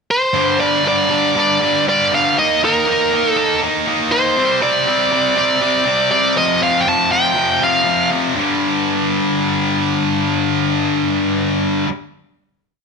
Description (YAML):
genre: rock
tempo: 120 BPM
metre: 4/4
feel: straight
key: G minor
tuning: A4 = 440 Hz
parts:
  - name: bluesy overdriven lead guitar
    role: melody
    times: 0.1-8.1 s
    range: Bb4 to A5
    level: -15 LUFS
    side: right 1 dB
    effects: distortion
  - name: high-gain distorted guitar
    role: riff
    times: 0.3-11.9 s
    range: F2 to Eb4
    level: -16 LUFS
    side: left 1 dB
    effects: distortion
room: moderate studio reverb, RT60 0.9 s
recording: none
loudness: -13 LUFS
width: side -4 dB against mid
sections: 0.0-0.3 pickup bar; 0.3-8.4 verse; 8.4-12.3 final chord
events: none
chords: 0.3 G5; 2.4 Eb5; 4.4 C5; 6.4 F5; 8.4 G5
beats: | 0.34 0.84 1.35 1.85 | 2.36 2.86 3.36 3.86 | 4.37 4.87 5.37 5.87 | 6.37 6.86 7.36 7.86 | 8.36 8.85 9.35 9.85 | 10.34 10.84 11.34 11.84